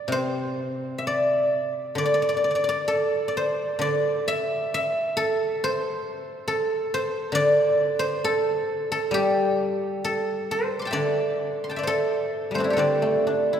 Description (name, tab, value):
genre	chinese traditional, Chinese solo plucked strings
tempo	66 BPM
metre	4/4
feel	uneven beats, rubato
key	D shang mode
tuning	A4 = 440 Hz
part	guzheng	solo	0.0-13.6 s	C3 to D6	-22 LUFS	equal	none
room	wet church reverb, RT60 3.7 s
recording	recorded in a church or concert hall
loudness	-22 LUFS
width	side -8 dB against mid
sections	0.0-13.6 A section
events	none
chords	none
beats	| 0.11 1.06 1.97 2.89 | 3.82 4.73 5.61 6.48 | 7.34 8.23 9.13 10.04 | 10.96 11.86 12.80